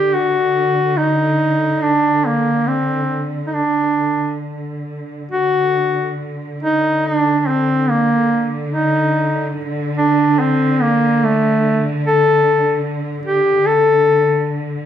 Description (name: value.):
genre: caucasian folk, Caucasian lament.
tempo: 71 BPM.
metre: 4/4.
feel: uneven beats, rubato.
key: D phrygian dominant.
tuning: A4 = 442 Hz.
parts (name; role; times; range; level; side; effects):
clear duduk; melody; 0.0-14.5 s; A3 to A4; -15 LUFS; equal; none.
rich chamber string section; drone; 0.0-14.9 s; D3; -22 LUFS; left 1 dB; none.
room: wet studio reverb, RT60 0.9 s.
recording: heard from further back in the room.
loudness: -14 LUFS.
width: side -10 dB against mid.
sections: 0.0-5.3 A section; 5.3-14.9 B section.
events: none.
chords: none.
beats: 0.16 0.99 | 1.83 2.69 3.54 4.43 | 5.32 6.18 7.05 7.91 | 8.74 9.57 10.40 11.22 | 12.04 12.86 13.67 14.49.